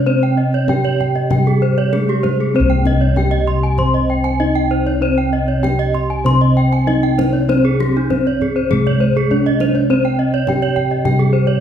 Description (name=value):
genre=Balinese gamelan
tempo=98 BPM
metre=4/4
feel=uneven beats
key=C pelog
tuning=A4 = 440 Hz
part: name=gamelan-type bronze metallophone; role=melody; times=0.0-11.6 s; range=Ab3 to C5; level=-20 LUFS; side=right 1 dB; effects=none
part: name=gamelan-type bronze metallophone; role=accompaniment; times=0.0-11.6 s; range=C3 to C4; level=-22 LUFS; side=right 2 dB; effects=none
part: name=gamelan-type bronze metallophone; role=arpeggios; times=0.0-11.5 s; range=G4 to C6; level=-22 LUFS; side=left 5 dB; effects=none
part: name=gamelan-type bossed gongs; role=bass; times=0.0-11.6 s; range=C2 to Db4+35c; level=-17 LUFS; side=equal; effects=none
part: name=gamelan-type bronze metallophone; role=arpeggios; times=0.2-11.6 s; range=Eb4 to C6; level=-22 LUFS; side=right 4 dB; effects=none
part: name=kendang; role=percussion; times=0.2-11.3 s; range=none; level=-26 LUFS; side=left 3 dB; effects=none
room=wet recital hall reverb, RT60 1.4 s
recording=recorded in a church or concert hall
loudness=-13 LUFS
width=side -9 dB against mid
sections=0.0-11.6 A section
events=none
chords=none